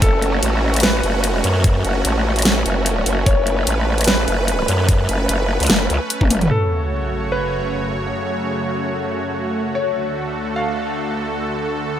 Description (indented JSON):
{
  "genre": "heavy wobble dubstep",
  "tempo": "148 BPM",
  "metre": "4/4",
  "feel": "swing 54% on 16ths, half-time",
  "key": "F# minor",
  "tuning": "A4 = 441 Hz",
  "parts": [
    { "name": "clear concert grand piano", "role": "melody", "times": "0.0-11.1 s", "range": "A4 to E#5", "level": "-24 LUFS", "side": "left 1 dB", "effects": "ping-pong delay" },
    { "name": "supersaw pad", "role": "sustained chords", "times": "0.0-12.0 s", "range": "D2 to C#5", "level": "-22 LUFS", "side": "right 1 dB", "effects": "sidechain pumping" },
    { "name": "growl bass", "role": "bass", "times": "0.0-6.5 s", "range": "F#1 to F#2", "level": "-18 LUFS", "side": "equal", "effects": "chorus, overdrive" },
    { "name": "dubstep drum kit", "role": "drums", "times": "0.0-6.5 s", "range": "hi-hat, snare drum, toms", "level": "-19 LUFS", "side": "equal", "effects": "none" },
    { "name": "electronic kick drum", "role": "drums", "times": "0.0-6.3 s", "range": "none", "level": "-16 LUFS", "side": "equal", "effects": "none" },
    { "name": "sub drop", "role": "sound effects", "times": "6.5-8.1 s", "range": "none", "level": "-24 LUFS", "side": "equal", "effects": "none" }
  ],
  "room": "light reverb",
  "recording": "none",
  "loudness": "-16 LUFS",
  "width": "side -10 dB against mid",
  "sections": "0.0-6.5 A section; 6.5-12.0 B section",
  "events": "drop 0.0-6.5; drum fill 6.2-6.5; impact 6.5-8.1",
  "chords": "0.0 F#m; 9.8 D"
}